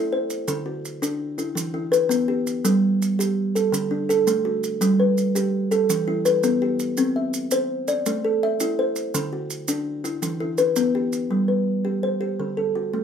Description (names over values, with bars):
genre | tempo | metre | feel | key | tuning
southern african traditional, mbira-style interlocking cycle | 111 BPM (dotted quarters) | 12/8 | straight | G major | A4 = 440 Hz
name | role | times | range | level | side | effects
kalimba | arpeggios | 0.0-13.0 s | D3 to E5 | -20 LUFS | equal | none
maracas | percussion | 0.3-11.3 s | none | -31 LUFS | right 6 dB | none
room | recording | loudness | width
moderate studio reverb, RT60 0.6 s | none | -20 LUFS | side -8 dB against mid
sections
0.0-2.6 A section; 2.6-11.3 B section; 11.3-13.0 B section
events
none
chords
0.5 D; 1.6 Em; 2.6 Gsus2; 3.7 D; 4.8 G; 5.9 Em; 7.0 C; 8.1 Am; 9.1 D; 10.2 Em; 11.3 G; 12.4 D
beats
| 0.49 1.03 1.57 2.11 | 2.65 3.19 3.73 4.27 | 4.81 5.35 5.89 6.43 | 6.97 7.51 8.05 8.59 | 9.13 9.68 10.22 10.76 | 11.31 11.85 12.40 12.95